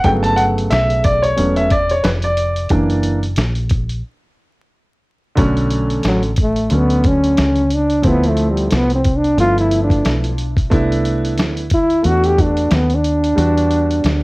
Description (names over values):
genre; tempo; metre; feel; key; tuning
hip hop, jazz-hop; 90 BPM; 4/4; swing 58% on 16ths; B minor; A4 = 440 Hz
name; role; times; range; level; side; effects
warm concert grand piano; accompaniment; 0.0-14.2 s; C#3 to A5; -18 LUFS; right 1 dB; cassette tape, plate reverb
deep dub fingered electric bass; bass; 0.0-14.2 s; E1 to E2; -18 LUFS; equal; none
dusty soul sampler-style drum kit; drums; 0.0-14.2 s; hi-hat, kick drum, snare drum; -19 LUFS; equal; cassette tape
dark trombone; melody; 6.1-14.2 s; F#3 to G4; -16 LUFS; equal; plate reverb
room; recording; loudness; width
light reverb; home recording on cassette, vinyl crackle; -13 LUFS; side -22 dB against mid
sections
0.0-5.4 A section; 5.4-14.2 A section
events
grand piano solo 0.0-5.4; break 4.0-5.4; trombone solo 5.4-14.2; kick muted 13.4-14.2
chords
0.0 Gmaj9#11; 2.7 F#7b13; 5.4 Bm9; 8.0 Dm9; 9.4 G13; 10.7 Cmaj13; 13.4 Em7